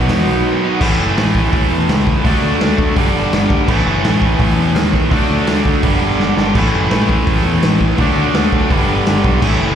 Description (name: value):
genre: punk rock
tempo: 167 BPM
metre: 4/4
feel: straight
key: unclear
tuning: A4 = 440 Hz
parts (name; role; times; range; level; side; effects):
- overdriven electric guitar; riff; 0.0-9.8 s; G2 to E4; -19 LUFS; left 10 dB; slapback echo
- overdriven electric guitar; riff; 0.0-9.8 s; G2 to D4; -18 LUFS; right 11 dB; slapback echo
- growling picked electric bass; bass; 0.0-9.7 s; F#1 to E2; -18 LUFS; equal; overdrive
- raw garage drum kit; drums; 0.1-9.5 s; crash cymbal, hi-hat, kick drum, snare drum; -17 LUFS; equal; none
room: small room ambience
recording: live gig heard through the venue's PA, club reverb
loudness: -12 LUFS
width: side -9 dB against mid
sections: 0.8-9.8 A section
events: drum fill 6.2-6.6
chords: 0.0 B; 0.8 A; 2.2 D; 3.0 G; 3.7 A; 5.1 D; 5.8 G; 6.6 A; 8.0 D; 8.7 G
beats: 0.09 0.45 | 0.81 1.17 1.53 1.89 | 2.25 2.60 2.96 3.32 | 3.68 4.04 4.40 4.76 | 5.12 5.48 5.83 6.19 | 6.55 6.91 7.27 7.63 | 7.99 8.35 8.71 9.06 | 9.42